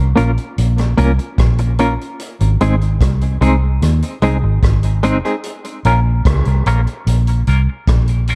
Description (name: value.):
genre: dub reggae.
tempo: 74 BPM.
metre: 4/4.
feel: straight.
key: Bb minor.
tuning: A4 = 440 Hz.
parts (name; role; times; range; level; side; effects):
vintage muted fingered electric bass; bass; 0.0-8.3 s; Ab1 to Eb2; -16 LUFS; equal; none.
semi-hollow electric guitar; accompaniment; 0.2-8.3 s; Ab3 to Bb4; -22 LUFS; equal; tremolo, high-pass filter, tape echo.
vintage drum kit; drums; 0.2-8.3 s; hi-hat, kick drum, rim click; -21 LUFS; equal; none.
room: light reverb, studio reverb.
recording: dark, warm production.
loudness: -15 LUFS.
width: mono.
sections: 0.0-8.3 A section.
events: filter sweep on clean electric guitar 2.2-8.3.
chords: 0.0 Bbm; 2.2 Ab; 5.4 Bbm.